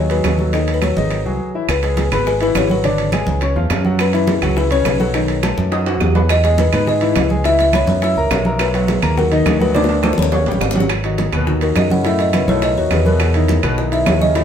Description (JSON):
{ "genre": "Afro-Cuban jazz", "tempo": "208 BPM", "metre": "4/4", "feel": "straight", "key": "C# minor, G# minor from 10.9 s", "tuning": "A4 = 440 Hz", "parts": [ { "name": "buzzing kalimba", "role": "melody", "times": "0.0-14.4 s", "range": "G#4 to F#5", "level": "-20 LUFS", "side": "left 2 dB", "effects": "none" }, { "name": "warm grand piano", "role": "accompaniment", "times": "0.0-14.4 s", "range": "A2 to E6", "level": "-21 LUFS", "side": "left 2 dB", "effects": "none" }, { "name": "modern bright fingered electric bass", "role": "bass", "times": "0.0-14.4 s", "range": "G#1 to G#2", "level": "-18 LUFS", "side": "equal", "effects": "none" }, { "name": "bongos", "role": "percussion", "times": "0.1-14.4 s", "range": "none", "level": "-26 LUFS", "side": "left 3 dB", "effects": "none" }, { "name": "congas", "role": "percussion", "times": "0.1-14.4 s", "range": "none", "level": "-23 LUFS", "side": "right 2 dB", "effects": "none" }, { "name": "timbales", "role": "percussion", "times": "0.1-14.4 s", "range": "none", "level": "-25 LUFS", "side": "right 5 dB", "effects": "none" }, { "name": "claves", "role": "percussion", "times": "0.2-14.2 s", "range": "none", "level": "-27 LUFS", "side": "right 6 dB", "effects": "none" } ], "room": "wet studio reverb, RT60 0.7 s", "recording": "heard from further back in the room", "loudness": "-14 LUFS", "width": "side -8 dB against mid", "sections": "0.0-1.7 A section; 1.7-10.9 B section; 10.9-14.4 C section", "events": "drum fill 5.7-6.3, 9.7-10.9; kalimba solo 10.9-14.4", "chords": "0.0 G#m7; 1.1 G#7; 1.7 C#m7; 2.8 G#dim; 3.4 C#add11; 4.0 F#5; 5.1 B7; 6.3 E; 7.4 C#m7; 8.0 F#7; 8.6 Bmaj7; 9.7 D5; 10.3 D#7; 10.9 G#m7; 12.1 F#m7; 12.6 B7; 13.2 Emaj7" }